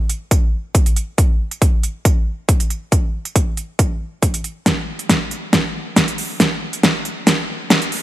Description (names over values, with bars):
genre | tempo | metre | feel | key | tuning
heavy wobble dubstep | 138 BPM | 4/4 | half-time | none | none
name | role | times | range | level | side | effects
big-room dance drum kit | drums | 0.1-8.0 s | hi-hat, snare drum | -17 LUFS | equal | small room reverb
electronic kick drum | drums | 0.3-7.8 s | none | -17 LUFS | equal | overdrive, small room reverb
room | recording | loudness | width
little or no reverb | high-pass filter | -16 LUFS | side -14 dB against mid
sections
0.0-8.0 A section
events
build-up 0.0-8.0; filter sweep 0.0-8.0; drum fill 4.7-8.0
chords
none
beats
0.31 0.75 | 1.18 1.62 2.05 2.49 | 2.92 3.36 3.79 4.23 | 4.66 5.09 5.53 5.96 | 6.40 6.83 7.27 7.70